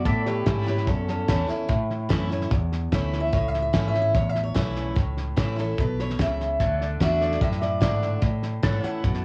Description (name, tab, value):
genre	honky-tonk and classic country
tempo	147 BPM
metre	4/4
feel	straight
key	A major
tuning	A4 = 442 Hz
part	picked steel-string acoustic guitar	melody	0.0-9.2 s	C#4 to F#5	-30 LUFS	equal	cassette tape
part	picked steel-string acoustic guitar	accompaniment	0.0-9.2 s	E2 to F#4	-33 LUFS	equal	cassette tape
part	pedal steel guitar	sustained chords	0.0-9.2 s	A4 to F#5	-40 LUFS	equal	lush chorus, cassette tape
part	vintage muted fingered electric bass	bass	0.0-9.2 s	G#1 to A2	-30 LUFS	equal	transformer saturation
part	cloth-damped thuddy drum kit	drums	0.1-9.2 s	hi-hat, kick drum, snare drum	-28 LUFS	equal	cassette tape
room	little or no reverb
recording	home recording on cassette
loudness	-24 LUFS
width	mono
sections	0.0-9.2 A section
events	steel-string acoustic guitar solo 0.0-9.2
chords	0.1 A; 6.6 D; 8.2 A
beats	| 0.06 0.47 0.88 1.29 | 1.70 2.10 2.51 2.92 | 3.33 3.74 4.15 4.56 | 4.96 5.37 5.78 6.19 | 6.60 7.01 7.42 7.82 | 8.23 8.64 9.05